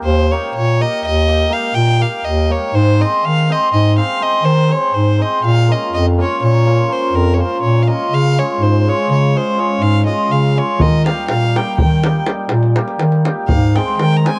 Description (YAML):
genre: balkan folk, Balkan wedding band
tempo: 246 BPM (eighths)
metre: 11/8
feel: straight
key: Eb mixolydian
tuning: A4 = 440 Hz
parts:
  - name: rich violin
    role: melody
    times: 0.0-14.4 s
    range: Bb4 to Bb5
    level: -22 LUFS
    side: equal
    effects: tape echo
  - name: mellow bass clarinet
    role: bass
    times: 0.0-14.3 s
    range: Eb2 to Eb3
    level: -16 LUFS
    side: equal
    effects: none
  - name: cimbalom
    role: accompaniment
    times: 0.3-14.4 s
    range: G3 to C5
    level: -22 LUFS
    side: equal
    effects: none
  - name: davul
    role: percussion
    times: 10.8-14.4 s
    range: none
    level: -21 LUFS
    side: equal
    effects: none
room: little or no reverb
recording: dry, close 1970s-style studio recording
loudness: -15 LUFS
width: mono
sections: 0.1-14.4 A section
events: none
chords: 0.1 Eb; 2.7 Ab; 5.4 Bbm; 8.1 Db; 10.8 Eb; 13.5 Ab